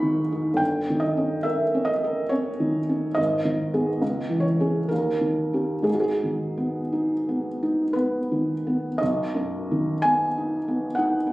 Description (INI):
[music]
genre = classical, romantic nocturne for solo piano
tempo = 54-73 BPM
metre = 3/4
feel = rubato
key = G# minor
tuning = A4 = 442 Hz
[part]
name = felt-muted upright piano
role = solo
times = 0.0-11.3 s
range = G1 to C#6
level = -22 LUFS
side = equal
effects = none
[sound]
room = light reverb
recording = recorded on a phone in the room, club reverb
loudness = -22 LUFS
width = side -18 dB against mid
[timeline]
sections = 0.0-9.0 A section; 9.0-11.3 B section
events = none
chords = 0.0 G#m; 0.6 D#7/G; 3.2 G#m; 4.0 C#m; 4.9 D#7; 5.9 G#m; 9.0 B